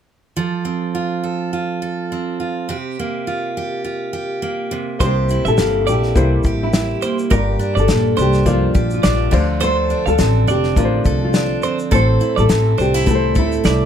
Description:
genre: acoustic pop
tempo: 104 BPM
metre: 4/4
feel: swing 55% on 16ths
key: unclear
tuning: A4 = 440 Hz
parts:
  - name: picked steel-string acoustic guitar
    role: accompaniment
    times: 0.4-13.9 s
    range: G2 to A4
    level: -21 LUFS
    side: right 4 dB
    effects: none
  - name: nylon-string guitar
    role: melody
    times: 5.0-13.9 s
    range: E4 to C5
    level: -20 LUFS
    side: left 2 dB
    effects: plate reverb
  - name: dark upright piano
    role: accompaniment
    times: 5.0-13.9 s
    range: A3 to D5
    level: -26 LUFS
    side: left 7 dB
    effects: none
  - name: twelve-string electric guitar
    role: arpeggios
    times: 5.0-13.9 s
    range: A4 to F5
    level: -24 LUFS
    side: right 6 dB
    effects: none
  - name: upright bass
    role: bass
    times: 5.0-13.9 s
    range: F1 to D2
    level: -18 LUFS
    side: equal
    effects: none
  - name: loose indie drum kit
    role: drums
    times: 5.0-13.8 s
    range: crash cymbal, kick drum, shaker, snare drum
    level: -20 LUFS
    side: left 1 dB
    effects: none
room: light reverb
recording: close, detailed microphones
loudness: -15 LUFS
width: side -9 dB against mid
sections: 0.4-5.0 A section; 5.0-13.9 B section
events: none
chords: 0.4 F; 2.7 C7sus4; 4.7 N.C.; 5.0 C7; 7.3 Gm7; 9.3 Dm7; 11.9 Am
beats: | 0.37 0.95 1.53 2.11 | 2.69 3.27 3.85 4.43 | 5.00 5.58 6.16 6.73 | 7.31 7.89 8.46 9.04 | 9.62 10.19 10.77 11.34 | 11.92 12.49 13.07 13.65

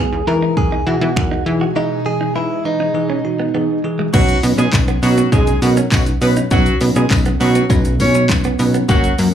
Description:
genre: dance-pop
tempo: 101 BPM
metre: 4/4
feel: straight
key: B major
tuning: A4 = 440 Hz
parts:
  - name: direct-recorded clean electric guitar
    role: melody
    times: 0.0-3.8 s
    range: D#4 to A#4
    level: -20 LUFS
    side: right 2 dB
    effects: phaser, slapback echo, digital delay
  - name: bell-like tine electric piano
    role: accompaniment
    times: 0.0-9.3 s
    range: E3 to C#5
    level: -21 LUFS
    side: left 3 dB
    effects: auto-pan, slapback echo
  - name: ethereal airy pad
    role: sustained chords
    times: 0.0-4.1 s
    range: B2 to G#4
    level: -28 LUFS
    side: equal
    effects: ensemble chorus, built-in reverb, sidechain pumping
  - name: direct-recorded clean electric guitar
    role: riff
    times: 0.0-9.2 s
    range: G#3 to F#4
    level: -25 LUFS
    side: right 8 dB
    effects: lush chorus, slapback echo
  - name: plucky analog bass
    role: bass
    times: 0.0-9.3 s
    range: F#1 to E3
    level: -17 LUFS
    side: right 1 dB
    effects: sidechain pumping
  - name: house drum kit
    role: drums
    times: 0.6-9.3 s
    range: crash cymbal, finger snaps, handclaps, hi-hat, kick drum, shaker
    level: -17 LUFS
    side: equal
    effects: overdrive
  - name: warm horn section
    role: melody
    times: 4.1-9.1 s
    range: F#3 to C#5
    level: -20 LUFS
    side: equal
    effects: sidechain pumping, slapback echo, digital delay
  - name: tambourine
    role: percussion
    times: 4.1-9.3 s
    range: none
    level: -35 LUFS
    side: left 2 dB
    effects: none
room: light reverb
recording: live gig heard through the venue's PA, club reverb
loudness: -13 LUFS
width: side -9 dB against mid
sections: 0.0-4.1 A section; 4.1-9.3 B section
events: drop 4.1-9.3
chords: 0.0 Emaj7; 4.1 Badd9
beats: 0.57 1.17 | 1.76 2.36 2.95 3.54 | 4.14 4.73 5.33 5.92 | 6.51 7.11 7.70 8.30 | 8.89

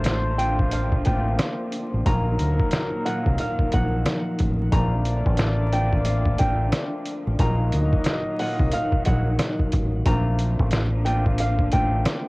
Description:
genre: hip hop, boom-bap hip-hop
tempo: 90 BPM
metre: 4/4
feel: swing 61% on 16ths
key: Bb major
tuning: A4 = 439 Hz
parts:
  - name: nylon-string guitar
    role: melody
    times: 0.0-12.0 s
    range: F5 to Bb5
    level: -29 LUFS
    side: equal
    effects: high-pass filter, low-pass filter, cassette tape, tape echo
  - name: concert harp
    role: accompaniment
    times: 0.0-12.3 s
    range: Bb2 to Gb4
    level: -29 LUFS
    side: equal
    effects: high-pass filter, low-pass filter
  - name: warm studio string section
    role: sustained chords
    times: 0.0-12.3 s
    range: D3 to Bb3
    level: -34 LUFS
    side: equal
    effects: high-pass filter, low-pass filter
  - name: mellow horn section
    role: stabs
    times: 0.0-9.7 s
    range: F3 to Eb5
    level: -32 LUFS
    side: left 1 dB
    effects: high-pass filter, low-pass filter, tape echo
  - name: deep dub fingered electric bass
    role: bass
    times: 0.0-12.0 s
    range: A1 to D2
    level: -23 LUFS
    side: equal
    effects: none
  - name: trip hop sampler-style drum kit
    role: drums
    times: 0.0-12.2 s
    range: hi-hat, kick drum, snare drum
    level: -24 LUFS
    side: equal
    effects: cassette tape
room: light reverb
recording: home recording on cassette, vinyl crackle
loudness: -20 LUFS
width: side -24 dB against mid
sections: 0.0-10.1 A section; 10.1-12.3 A section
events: none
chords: 0.0 Bbmaj7; 2.1 Ebmadd9/Bb; 4.7 Bbmaj7; 7.4 Ebmadd9/Bb; 10.1 Bbmaj7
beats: 0.06 0.73 1.39 | 2.06 2.73 3.39 4.06 | 4.73 5.39 6.06 6.73 | 7.39 8.06 8.73 9.39 | 10.06 10.73 11.39 12.06

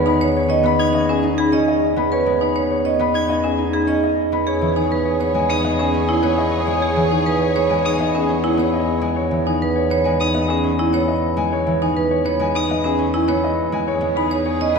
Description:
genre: classical, minimalist pattern music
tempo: 102 BPM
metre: 4/4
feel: straight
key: E major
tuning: A4 = 439 Hz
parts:
  - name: concert harp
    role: accompaniment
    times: 0.0-14.8 s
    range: D#3 to D#4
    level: -23 LUFS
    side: left 2 dB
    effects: none
  - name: mellow bass clarinet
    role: bass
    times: 0.0-14.8 s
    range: E2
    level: -25 LUFS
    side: left 3 dB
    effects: none
  - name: warm concert grand piano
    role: melody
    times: 0.1-14.8 s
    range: G#4 to B5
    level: -24 LUFS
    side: left 3 dB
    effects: none
  - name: marimba with hard mallets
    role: arpeggios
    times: 0.1-14.8 s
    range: C#4 to D#5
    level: -20 LUFS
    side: right 4 dB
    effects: none
  - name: rich violin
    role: arpeggios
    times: 0.8-12.7 s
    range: D#6 to G#6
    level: -30 LUFS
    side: left 3 dB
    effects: none
  - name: mellow soprano saxophone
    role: second line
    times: 4.5-8.9, 13.9-14.7 s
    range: G#4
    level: -28 LUFS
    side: right 1 dB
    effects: none
  - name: warm symphonic string section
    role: sustained chords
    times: 4.5-9.0, 13.9-14.8 s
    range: G#4 to C#5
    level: -28 LUFS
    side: left 2 dB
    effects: none
room: wet concert hall reverb, RT60 2.4 s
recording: recorded in a church or concert hall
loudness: -16 LUFS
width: side -5 dB against mid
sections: 0.0-14.8 A section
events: none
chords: 0.0 E6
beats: 0.35 0.94 1.52 | 2.11 2.70 3.29 3.88 | 4.47 5.05 5.64 6.23 | 6.82 7.41 8.00 8.58 | 9.17 9.76 10.35 10.94 | 11.53 12.11 12.70 13.29 | 13.88 14.47

